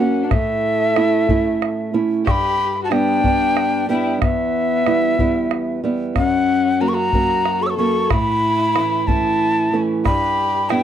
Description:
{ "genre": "andean folk, Andean ensemble", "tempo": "62 BPM (dotted quarters)", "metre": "6/8", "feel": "straight", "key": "unclear", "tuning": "A4 = 440 Hz", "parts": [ { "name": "quena", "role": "melody", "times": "0.0-10.8 s", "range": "E5 to E6", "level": "-20 LUFS", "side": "right 1 dB", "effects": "none" }, { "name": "dark violin", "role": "second line", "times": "0.0-10.8 s", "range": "A3 to C#5", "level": "-22 LUFS", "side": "left 9 dB", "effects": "none" }, { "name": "nylon-string guitar", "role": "accompaniment", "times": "0.0-10.8 s", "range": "E2 to F#4", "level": "-21 LUFS", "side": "right 5 dB", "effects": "none" }, { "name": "bombo", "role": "percussion", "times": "0.3-10.8 s", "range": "none", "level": "-21 LUFS", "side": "equal", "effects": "none" } ], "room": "little or no reverb", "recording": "dry, close 1970s-style studio recording", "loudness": "-16 LUFS", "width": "side -10 dB against mid", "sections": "0.0-10.8 A section", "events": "none", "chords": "0.3 A; 2.3 G; 4.2 Em; 6.2 F#; 8.1 A; 10.1 G", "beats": "| 0.31 1.29 | 2.26 3.24 | 4.21 5.19 | 6.16 7.14 | 8.11 9.09 | 10.06" }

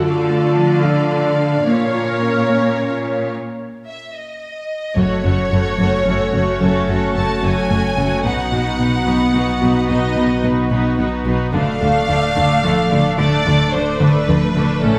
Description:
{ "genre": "cinematic, hybrid orchestral and electronic film score", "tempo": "73 BPM (dotted quarters)", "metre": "6/8", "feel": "straight", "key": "unclear", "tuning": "A4 = 440 Hz", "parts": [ { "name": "warm symphonic violin section", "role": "second line", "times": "0.0-15.0 s", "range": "D4 to F5", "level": "-30 LUFS", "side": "equal", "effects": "none" }, { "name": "clear symphonic viola section", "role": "accompaniment", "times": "0.0-15.0 s", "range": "A3 to C#5", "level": "-26 LUFS", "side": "equal", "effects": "none" }, { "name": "chorused pulse-width pad", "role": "sustained chords", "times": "0.0-15.0 s", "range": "A3 to D5", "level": "-26 LUFS", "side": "equal", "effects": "none" }, { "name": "mellow French horn section", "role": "sustained chords", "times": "0.0-15.0 s", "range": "A3 to F4", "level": "-26 LUFS", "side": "equal", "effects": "none" }, { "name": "thumb-piano-like synth pluck", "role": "arpeggios", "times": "0.0-15.0 s", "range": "D3 to A#4", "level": "-25 LUFS", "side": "equal", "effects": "chorus, tape echo" }, { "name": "rich symphonic cello section", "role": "bass", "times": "0.0-14.9 s", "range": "F#2 to D3", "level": "-24 LUFS", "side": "equal", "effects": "none" }, { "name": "rich symphonic violin section", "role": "melody", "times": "3.9-15.0 s", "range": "A4 to A5", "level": "-24 LUFS", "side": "equal", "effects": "none" }, { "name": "punchy sub bass", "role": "bass", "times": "5.0-15.0 s", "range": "D1 to B1", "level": "-29 LUFS", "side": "equal", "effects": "none" }, { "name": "rich symphonic double bass section", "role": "bass", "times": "5.0-14.9 s", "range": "F#1 to D2", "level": "-25 LUFS", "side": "equal", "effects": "none" } ], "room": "moderate scoring stage reverb, RT60 2.0 s", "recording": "small room ambience", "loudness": "-17 LUFS", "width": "mono", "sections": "0.0-5.0 A section; 5.0-15.0 B section", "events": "break 3.3-5.0", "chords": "0.0 Dm; 1.7 A#m; 3.3 N.C.; 5.0 F#m; 8.2 B; 11.5 Dm", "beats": "| 0.03 0.85 | 1.67 2.50 | 3.32 4.14 | 4.96 5.78 | 6.61 7.43 | 8.25 9.07 | 9.89 10.71 | 11.54 12.36 | 13.18 14.00 | 14.82" }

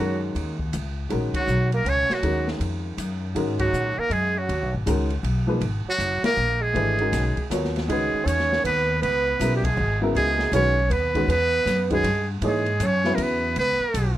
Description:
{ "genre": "modal jazz", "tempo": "159 BPM", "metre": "3/4", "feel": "swing 64% on 8ths", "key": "C# dorian from 7.9 s", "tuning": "A4 = 442 Hz", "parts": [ { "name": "trumpet with metal mute", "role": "melody", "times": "0.0-14.2 s", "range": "Gb4 to C#5", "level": "-25 LUFS", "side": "equal", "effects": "none" }, { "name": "breathy tenor saxophone", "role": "second line", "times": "0.0-14.2 s", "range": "Gb3 to C#4", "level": "-27 LUFS", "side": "right 5 dB", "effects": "none" }, { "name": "warm upright piano", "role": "accompaniment", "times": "0.0-13.5 s", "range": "C#3 to Db5", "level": "-27 LUFS", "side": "left 1 dB", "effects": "none" }, { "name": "upright bass", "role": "bass", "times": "0.0-14.2 s", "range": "Gb1 to Bb2", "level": "-25 LUFS", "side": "left 1 dB", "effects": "none" }, { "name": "open jazz drum kit", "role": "drums", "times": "0.4-14.1 s", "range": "hi-hat, kick drum, ride cymbal, snare drum", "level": "-33 LUFS", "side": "equal", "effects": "none" } ], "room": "little or no reverb", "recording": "close, detailed microphones", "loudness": "-21 LUFS", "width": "side -13 dB against mid", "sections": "0.0-7.9 A section; 7.9-14.2 B section", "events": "band accent 1.3, 3.5, 6.2, 9.6", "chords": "0.0 Ebm7; 3.4 Abm9; 7.9 C#m9", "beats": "0.34 0.72 | 1.09 1.47 1.85 | 2.22 2.60 2.98 | 3.35 3.73 4.11 | 4.49 4.86 5.24 | 5.62 6.00 6.37 | 6.75 7.13 7.51 | 7.89 8.26 8.64 | 9.02 9.40 9.78 | 10.16 10.54 10.91 | 11.29 11.67 12.05 | 12.43 12.81 13.19 | 13.57 13.95" }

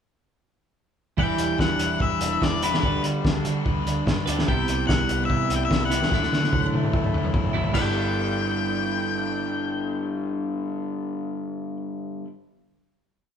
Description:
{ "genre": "indie rock", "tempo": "147 BPM", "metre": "4/4", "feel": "straight", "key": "G major", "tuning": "A4 = 440 Hz", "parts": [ { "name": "octave-fuzz lead guitar", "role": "melody", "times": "1.2-11.8 s", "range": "B4 to G5", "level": "-28 LUFS", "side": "left 6 dB", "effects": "distortion" }, { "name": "raw garage guitar", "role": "riff", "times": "1.2-12.3 s", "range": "G2 to B4", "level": "-29 LUFS", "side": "left 4 dB", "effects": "overdrive" }, { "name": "twelve-string electric guitar", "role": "riff", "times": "1.2-12.3 s", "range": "C3 to B4", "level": "-28 LUFS", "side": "right 6 dB", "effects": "none" }, { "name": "hollow-body short-scale picked electric bass", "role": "bass", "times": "1.2-12.2 s", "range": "E1 to D3", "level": "-29 LUFS", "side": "equal", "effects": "none" }, { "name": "cloth-damped thuddy drum kit", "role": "drums", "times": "1.2-7.8 s", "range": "crash cymbal, hi-hat, kick drum, snare drum, toms", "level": "-25 LUFS", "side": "equal", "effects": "none" } ], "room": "moderate large studio reverb, RT60 1.2 s", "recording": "band playing live in one room", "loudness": "-22 LUFS", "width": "side -8 dB against mid", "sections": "1.2-7.7 pre-chorus; 7.7-11.0 final chord", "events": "drum fill 6.1-7.7", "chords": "1.2 Em7; 2.8 Gmaj7/D; 4.5 Cmaj7; 6.1 Dadd9; 7.7 G69", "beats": "| 1.19 1.60 2.01 2.42 | 2.83 3.24 3.65 4.06 | 4.47 4.88 5.29 5.70 | 6.11 6.52 6.92 7.33 | 7.74 8.15 8.56 8.96 | 9.37 9.78 10.19 10.60" }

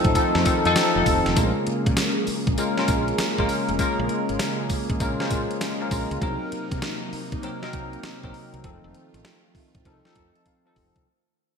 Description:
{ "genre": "R&B, new jack swing", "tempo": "99 BPM", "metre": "4/4", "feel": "swing 65% on 16ths", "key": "Bb minor", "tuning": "A4 = 439 Hz", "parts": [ { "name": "bell-like tine electric piano", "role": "accompaniment", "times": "0.0-11.1 s", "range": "F3 to Bb5", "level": "-24 LUFS", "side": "left 2 dB", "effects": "analog chorus" }, { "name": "phased analog pad", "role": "sustained chords", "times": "0.0-11.0 s", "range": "C3 to Ab4", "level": "-31 LUFS", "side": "right 3 dB", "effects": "phaser, chorus" }, { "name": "woody fretless electric bass", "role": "bass", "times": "0.0-11.0 s", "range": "F1 to C3", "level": "-29 LUFS", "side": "equal", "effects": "none" }, { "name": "clean 12-bit digital drum machine", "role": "drums", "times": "0.0-11.1 s", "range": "hi-hat, kick drum, snare drum, tambourine", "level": "-26 LUFS", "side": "equal", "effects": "gated reverb" } ], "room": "moderate lush hall reverb, RT60 2.1 s", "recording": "bright 1980s-style digital production", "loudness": "-21 LUFS", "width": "side -6 dB against mid", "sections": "0.0-1.4 A section; 1.4-11.1 B section", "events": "fade-out 1.4-11.1; tine electric piano fill 5.3-6.2, 9.9-11.1; drum fill 10.5-11.1", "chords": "0.0 F7; 1.4 Bbm7; 6.2 Cm7b5; 8.6 F7", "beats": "0.15 0.76 | 1.37 1.97 2.58 3.18 | 3.79 4.40 5.00 5.61 | 6.21 6.82 7.43 8.03 | 8.64 9.24 9.85 10.46" }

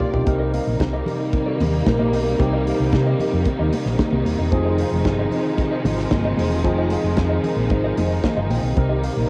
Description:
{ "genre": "disco", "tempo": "113 BPM", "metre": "4/4", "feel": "straight", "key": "C minor", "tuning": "A4 = 441 Hz", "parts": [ { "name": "barky tine electric piano", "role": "accompaniment", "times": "0.0-9.3 s", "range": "C3 to G5", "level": "-28 LUFS", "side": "equal", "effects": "overdrive, cassette tape" }, { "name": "mellow electric guitar", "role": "accompaniment", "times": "0.0-9.2 s", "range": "Eb4 to F5", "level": "-32 LUFS", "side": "equal", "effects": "cassette tape, plate reverb" }, { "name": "clear symphonic string section", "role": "sustained chords", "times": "0.0-9.3 s", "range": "C3 to D5", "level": "-27 LUFS", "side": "equal", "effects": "cassette tape" }, { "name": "damped 70s drum kit", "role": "drums", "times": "0.0-9.2 s", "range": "hi-hat, kick drum, snare drum, toms", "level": "-27 LUFS", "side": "equal", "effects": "cassette tape" }, { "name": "hollow-body short-scale fingered electric bass", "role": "bass", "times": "0.1-9.3 s", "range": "Eb1 to C3", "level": "-25 LUFS", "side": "equal", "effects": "none" }, { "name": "congas", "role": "percussion", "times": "0.3-8.9 s", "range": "none", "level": "-29 LUFS", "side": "equal", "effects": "none" } ], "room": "light reverb", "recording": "home recording on cassette", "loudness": "-20 LUFS", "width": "mono", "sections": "0.3-9.3 A section", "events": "drum fill 0.0; tine electric piano fill 7.2-8.8", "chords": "0.3 Cm7; 4.5 Fm7; 8.8 Cm7", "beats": "| 0.27 0.80 1.33 1.86 | 2.40 2.93 3.46 3.99 | 4.52 5.05 5.58 6.11 | 6.64 7.17 7.71 8.24 | 8.77" }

